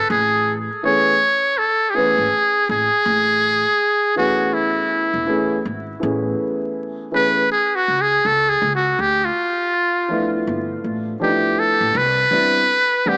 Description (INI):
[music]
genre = hip hop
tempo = 81 BPM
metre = 4/4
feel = swing 60% on 16ths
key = A major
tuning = A4 = 439 Hz
[part]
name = trumpet with metal mute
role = melody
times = 0.0-13.2 s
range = E4 to C#5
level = -16 LUFS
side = equal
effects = cassette tape, analog delay
[part]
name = upright bass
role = bass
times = 0.1-12.2 s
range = E1 to D2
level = -26 LUFS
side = equal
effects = none
[part]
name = dark baby grand piano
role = accompaniment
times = 0.8-13.2 s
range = E3 to F#5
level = -21 LUFS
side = equal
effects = cassette tape
[sound]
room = moderate spring reverb, RT60 1.9 s, small room ambience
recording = home recording on cassette, vinyl crackle, small speaker sound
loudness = -15 LUFS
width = side -35 dB against mid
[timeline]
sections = 0.0-6.0 A section; 6.0-13.2 B section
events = muted trumpet solo 6.0-13.2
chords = 0.1 Amaj7; 9.0 Dm; 10.5 G13; 11.9 Cmaj9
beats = | 0.10 0.84 1.58 2.32 | 3.06 3.80 4.54 5.28 | 6.02 6.76 7.50 8.24 | 8.98 9.73 10.47 11.21 | 11.95 12.69